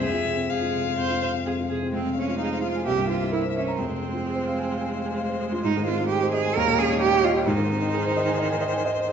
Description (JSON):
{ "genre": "quick classical-period movement for piano quartet", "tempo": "130 BPM", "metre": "4/4", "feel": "rubato", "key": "F minor", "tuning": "A4 = 438 Hz", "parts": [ { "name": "rich violin", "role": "melody", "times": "0.0-9.1 s", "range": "C5 to F5", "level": "-32 LUFS", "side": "left 8 dB", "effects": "none" }, { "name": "bright cello", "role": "second line", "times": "0.0-9.1 s", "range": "Ab3 to Bb4", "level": "-26 LUFS", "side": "right 7 dB", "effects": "none" }, { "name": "clear viola", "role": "accompaniment", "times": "0.0-9.1 s", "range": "Eb3 to C5", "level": "-31 LUFS", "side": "right 3 dB", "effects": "none" }, { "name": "warm concert grand piano", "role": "accompaniment", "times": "0.0-9.1 s", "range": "C2 to Bb5", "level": "-26 LUFS", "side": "left 1 dB", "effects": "none" } ], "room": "wet recital hall reverb, RT60 1.3 s", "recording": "nothing above 7.6 kHz", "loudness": "-22 LUFS", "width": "side -7 dB against mid", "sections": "0.0-1.9 A section; 1.9-9.1 B section", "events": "none", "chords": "0.0 Fm; 2.9 C7; 3.8 Fm; 5.6 Ab; 6.6 Eb7; 7.5 Ab" }